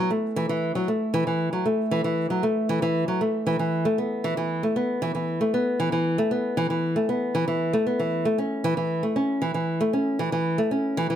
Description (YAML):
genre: folktronica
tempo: 116 BPM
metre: 4/4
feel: straight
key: F# minor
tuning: A4 = 440 Hz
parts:
  - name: nylon-string guitar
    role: solo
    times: 0.0-11.2 s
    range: E3 to C#4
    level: -22 LUFS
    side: equal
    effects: none
room: moderate studio reverb, RT60 0.6 s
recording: none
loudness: -22 LUFS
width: side -10 dB against mid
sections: 0.0-11.2 A section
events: none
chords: none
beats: 0.24 0.76 1.27 | 1.79 2.31 2.83 3.34 | 3.86 4.38 4.89 5.41 | 5.93 6.45 6.96 7.48 | 8.00 8.51 9.03 9.55 | 10.07 10.58 11.10